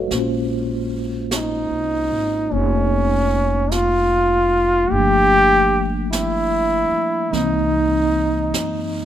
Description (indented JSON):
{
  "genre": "jazz ballad",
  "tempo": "50 BPM",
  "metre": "4/4",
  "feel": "swing 66% on 8ths",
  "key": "unclear",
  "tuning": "A4 = 441 Hz",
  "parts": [
    { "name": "bright tine electric piano", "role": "accompaniment", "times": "0.0-9.1 s", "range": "E3 to E#5", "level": "-23 LUFS", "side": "equal", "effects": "medium stereo tremolo" },
    { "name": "upright bass", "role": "bass", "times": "0.0-9.1 s", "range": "F1 to Gb2", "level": "-24 LUFS", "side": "equal", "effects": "none" },
    { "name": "jazz brush drum kit", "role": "drums", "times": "0.1-9.1 s", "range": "brushed snare drum, hi-hat, snare drum", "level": "-31 LUFS", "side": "right 3 dB", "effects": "none" },
    { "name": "brilliant trombone", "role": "melody", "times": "1.4-9.1 s", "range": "Db4 to G4", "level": "-18 LUFS", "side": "equal", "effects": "none" }
  ],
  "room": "light reverb",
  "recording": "minimal, uncompressed stereo recording",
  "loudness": "-16 LUFS",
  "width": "side -11 dB against mid",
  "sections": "0.0-9.1 A section",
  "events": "none",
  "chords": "0.1 Bbm9; 4.9 Gm9; 7.3 C7alt"
}